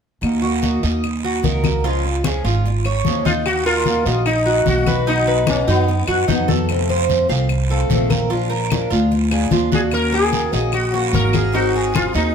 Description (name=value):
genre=latin, Cuban son and guajira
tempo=149 BPM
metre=4/4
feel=straight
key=Eb minor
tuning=A4 = 440 Hz
part: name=picked acoustic archtop guitar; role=accompaniment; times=0.2-12.3 s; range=B2 to Ab4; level=-24 LUFS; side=left 2 dB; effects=none
part: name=upright bass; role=bass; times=0.2-12.3 s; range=Ab1 to F#2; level=-20 LUFS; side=right 1 dB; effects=none
part: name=claves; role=percussion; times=0.2-12.1 s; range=none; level=-31 LUFS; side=left 8 dB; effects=none
part: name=congas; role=percussion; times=0.2-12.3 s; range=none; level=-23 LUFS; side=left 4 dB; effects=none
part: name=guiro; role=percussion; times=0.2-12.3 s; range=none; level=-29 LUFS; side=right 7 dB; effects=none
part: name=Cuban tres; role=arpeggios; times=0.4-12.3 s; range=Eb4 to F5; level=-22 LUFS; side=right 3 dB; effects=none
part: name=sitar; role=melody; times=3.3-6.1, 9.7-12.3 s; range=B3 to Bb4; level=-20 LUFS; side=left 2 dB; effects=none
room=moderate studio reverb, RT60 0.9 s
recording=none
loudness=-15 LUFS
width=side -7 dB against mid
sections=0.2-3.5 A section; 3.5-12.3 B section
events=none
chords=0.2 Ebm; 1.8 Db; 3.5 Ebm; 5.1 B; 6.7 F; 8.3 Bb7; 9.9 Ebm7; 11.5 Ab7